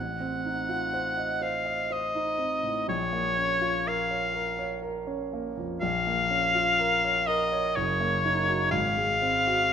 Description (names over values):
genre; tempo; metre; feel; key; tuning
classical, romantic duo for oboe and grand piano; 62 BPM; 3/4; rubato; Bb minor; A4 = 440 Hz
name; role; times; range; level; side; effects
bright oboe; melody; 0.0-9.7 s; Db5 to Gb5; -25 LUFS; left 2 dB; none
warm concert grand piano; accompaniment; 0.0-9.7 s; Gb1 to Eb5; -30 LUFS; right 2 dB; none
room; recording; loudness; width
moderate recital hall reverb, RT60 1.5 s; minimal, uncompressed stereo recording; -24 LUFS; side -8 dB against mid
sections
0.0-9.7 A section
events
none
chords
0.0 F7/A; 2.9 Bbm; 7.8 Ebm7/Gb; 8.7 Ab7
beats
0.94 1.91 | 2.89 3.87 4.84 | 5.81 6.78 7.76 | 8.71 9.71